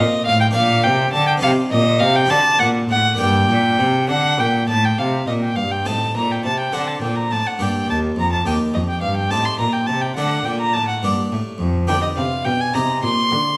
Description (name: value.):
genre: classical, baroque-style sonata movement with continuo.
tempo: 69 BPM (dotted quarters).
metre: 6/8.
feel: straight.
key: G minor.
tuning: A4 = 440 Hz.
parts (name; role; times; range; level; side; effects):
rich violin; melody; 0.0-13.6 s; Eb5 to C6; -21 LUFS; equal; none.
harpsichord; accompaniment; 0.0-13.6 s; Eb2 to Bb4; -25 LUFS; equal; none.
rich cello; bass; 0.0-13.6 s; Eb2 to D3; -24 LUFS; equal; none.
room: wet recital hall reverb, RT60 1.3 s.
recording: lossy compression artefacts.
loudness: -18 LUFS.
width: mono.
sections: 0.0-5.0 A section; 5.0-13.6 A section.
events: none.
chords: 0.0 Adim; 0.6 Bb; 1.4 Cm; 2.3 D7; 3.2 Gm; 5.0 Adim; 6.7 D5; 7.6 Gm; 8.5 Eb; 9.3 Am7b5; 10.2 D5; 11.0 Gm; 11.9 G; 12.7 Cm.